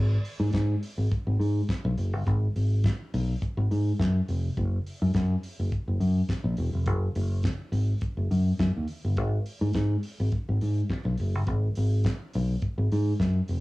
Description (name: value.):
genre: disco.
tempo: 104 BPM.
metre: 4/4.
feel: straight.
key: G# dorian.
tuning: A4 = 441 Hz.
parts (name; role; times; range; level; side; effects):
fingered electric bass; bass; 0.0-13.6 s; E1 to G#2; -24 LUFS; equal; none.
damped 70s drum kit; drums; 0.2-13.6 s; handclaps, hi-hat, kick drum, snare drum; -32 LUFS; equal; cassette tape.
room: little or no reverb.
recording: home recording on cassette, small room ambience.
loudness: -24 LUFS.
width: side -19 dB against mid.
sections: 0.0-13.6 A section.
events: none.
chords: none.